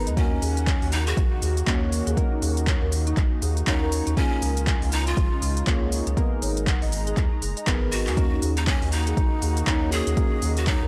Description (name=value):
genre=afro house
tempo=120 BPM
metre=4/4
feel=swing 59% on 16ths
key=Eb minor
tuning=A4 = 440 Hz
part: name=breathy bright large pan pipes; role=melody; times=0.0-10.9 s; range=Db4 to Ab4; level=-32 LUFS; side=equal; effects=none
part: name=warm analog pad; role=sustained chords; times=0.0-10.9 s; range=Db3 to Bb5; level=-38 LUFS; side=equal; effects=chorus, sidechain pumping
part: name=folk marimba with medium mallets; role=arpeggios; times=0.0-10.9 s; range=Ab3 to Ab5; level=-38 LUFS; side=equal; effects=sidechain pumping
part: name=deep mellow chord stab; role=stabs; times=0.0-10.9 s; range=Bb3 to Db5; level=-34 LUFS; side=equal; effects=chorus, sidechain pumping
part: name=round analog bass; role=bass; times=0.0-10.9 s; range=Gb1 to Eb2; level=-28 LUFS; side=equal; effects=tube saturation, sidechain pumping
part: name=deep house drum kit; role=drums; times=0.1-10.8 s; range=handclaps, hi-hat, shaker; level=-33 LUFS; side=equal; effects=none
part: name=electronic kick drum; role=drums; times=0.2-10.8 s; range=none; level=-26 LUFS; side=equal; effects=none
room=little or no reverb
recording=dry, gritty hardware recording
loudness=-24 LUFS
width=mono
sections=0.0-10.9 A section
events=none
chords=0.2 Ebm7; 4.2 Db6; 6.2 Abmadd9; 8.2 Ebm7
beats=| 0.17 0.67 1.17 1.67 | 2.17 2.67 3.17 3.67 | 4.17 4.67 5.17 5.67 | 6.17 6.67 7.17 7.67 | 8.17 8.67 9.17 9.67 | 10.17 10.67